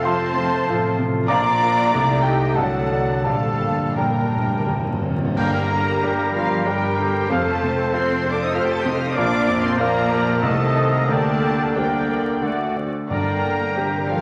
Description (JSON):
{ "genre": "classical, romantic movement for piano and orchestra", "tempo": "83-98 BPM", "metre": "3/4", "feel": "rubato", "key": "G minor", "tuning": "A4 = 441 Hz", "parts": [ { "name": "clear concert grand piano", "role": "melody", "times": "0.0-14.2 s", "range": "Bb1 to D6", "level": "-26 LUFS", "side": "equal", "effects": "none" }, { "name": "clear symphonic violin section", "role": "melody", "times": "0.0-14.2 s", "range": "F5 to A6", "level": "-35 LUFS", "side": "equal", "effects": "none" }, { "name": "clear clarinet", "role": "second line", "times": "0.0-14.2 s", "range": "D4 to A5", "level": "-32 LUFS", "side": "equal", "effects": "none" }, { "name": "clear oboe", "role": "second line", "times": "0.0-14.2 s", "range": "D4 to D5", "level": "-34 LUFS", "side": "equal", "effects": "none" }, { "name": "dark symphonic violin section", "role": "second line", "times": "0.0-14.2 s", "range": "Eb5 to A6", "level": "-34 LUFS", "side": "equal", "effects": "none" }, { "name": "silver concert flute", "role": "second line", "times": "0.0-14.2 s", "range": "Bb4 to Bb5", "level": "-29 LUFS", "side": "equal", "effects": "none" }, { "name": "dark bassoon", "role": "accompaniment", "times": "0.0-14.2 s", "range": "Bb2 to Bb3", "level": "-32 LUFS", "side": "equal", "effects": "none" }, { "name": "rich symphonic viola section", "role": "accompaniment", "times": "0.0-14.2 s", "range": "F#4 to Eb5", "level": "-30 LUFS", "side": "equal", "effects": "none" }, { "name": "bright trombone section", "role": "sustained chords", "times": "0.0-14.2 s", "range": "Bb2 to C4", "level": "-30 LUFS", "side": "equal", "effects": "none" }, { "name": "dark French horn section", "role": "sustained chords", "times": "0.0-14.2 s", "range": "G3 to Eb5", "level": "-34 LUFS", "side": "equal", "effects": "none" }, { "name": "clear symphonic cello section", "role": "bass", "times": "0.0-14.2 s", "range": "F3 to A4", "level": "-34 LUFS", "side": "equal", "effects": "none" }, { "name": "clear symphonic double bass section", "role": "bass", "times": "0.0-14.2 s", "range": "F1 to F2", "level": "-33 LUFS", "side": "equal", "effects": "none" }, { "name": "cymbal swell, clash cymbals and concert bass drum", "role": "percussion", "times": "1.3-6.6 s", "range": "none", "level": "-42 LUFS", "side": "equal", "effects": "none" }, { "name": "timpani", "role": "percussion", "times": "3.3-5.3, 13.1-14.0 s", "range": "G2", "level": "-30 LUFS", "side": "equal", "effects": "none" }, { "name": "mellow trumpet", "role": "stabs", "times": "5.4-14.2 s", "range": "Eb5 to G5", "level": "-31 LUFS", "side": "equal", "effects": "none" } ], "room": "wet recital hall reverb, RT60 1.3 s", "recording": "vinyl crackle", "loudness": "-20 LUFS", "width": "mono", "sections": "0.0-5.4 A section; 5.4-14.2 A section", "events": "timpani fill 3.3-5.4; band accent 5.4-6.0", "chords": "0.0 F; 1.3 Bb; 1.9 Adim/C; 2.6 D7/C; 3.3 Gm/Bb; 5.4 Gm; 7.3 F; 9.2 Bb; 10.4 Adim/C; 11.1 Gm/D; 12.4 D; 13.1 Gm", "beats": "0.05 0.66 | 1.28 1.91 2.56 | 3.25 3.97 4.67 | 5.36 6.02 6.66 | 7.29 7.93 8.55 | 9.16 9.79 10.43 | 11.08 11.75 12.41 | 13.09 13.75" }